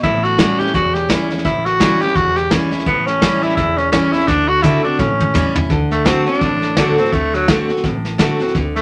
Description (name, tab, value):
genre	rockabilly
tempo	169 BPM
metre	4/4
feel	swing 59% on 8ths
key	D major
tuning	A4 = 441 Hz
part	raspy tenor saxophone	melody	0.0-8.8 s	F#3 to G4	-19 LUFS	equal	none
part	picked steel-string acoustic guitar	accompaniment	0.0-8.8 s	E2 to F#4	-21 LUFS	equal	none
part	upright bass	bass	0.0-8.8 s	E1 to D2	-28 LUFS	equal	none
part	vintage brush drum kit	drums	0.0-8.8 s	hi-hat, kick drum, snare drum, toms	-21 LUFS	equal	none
room	moderate studio reverb, RT60 0.6 s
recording	none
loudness	-16 LUFS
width	mono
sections	0.0-5.7 A section; 5.7-8.8 B section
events	drum fill 4.3-5.7; tenor saxophone solo 5.7-8.8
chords	0.0 A7; 4.3 D7; 5.0 A7; 5.7 D7